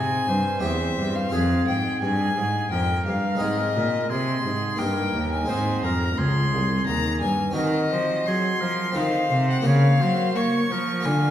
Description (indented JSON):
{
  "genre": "classical, baroque-style sonata movement with continuo",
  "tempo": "87 BPM",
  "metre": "3/4",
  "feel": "straight",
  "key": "Bb minor from 7.6 s",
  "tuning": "A4 = 441 Hz",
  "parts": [
    { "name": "rich violin", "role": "melody", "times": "0.0-11.3 s", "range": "Eb5 to Db6", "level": "-26 LUFS", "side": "left 4 dB", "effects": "none" },
    { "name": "clear oboe", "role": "second line", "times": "0.0-11.3 s", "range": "Ab4 to F5", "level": "-30 LUFS", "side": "right 4 dB", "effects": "none" },
    { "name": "harpsichord", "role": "accompaniment", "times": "0.0-11.3 s", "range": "C2 to Bb4", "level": "-25 LUFS", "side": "left 1 dB", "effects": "none" },
    { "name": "clear cello", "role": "bass", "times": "0.0-11.3 s", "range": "C2 to Bb3", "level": "-26 LUFS", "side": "right 1 dB", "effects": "none" }
  ],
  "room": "wet recital hall reverb, RT60 1.5 s",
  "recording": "heard from further back in the room",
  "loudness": "-20 LUFS",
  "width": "side -11 dB against mid",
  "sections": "0.0-11.3 A section",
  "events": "none",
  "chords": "0.0 Fm; 0.6 C/E; 1.3 Fm; 3.4 Ab; 4.8 Eb/G; 5.5 Ab; 7.6 Cm7b5/Eb; 9.0 F7/Eb; 9.7 Bbm/Db"
}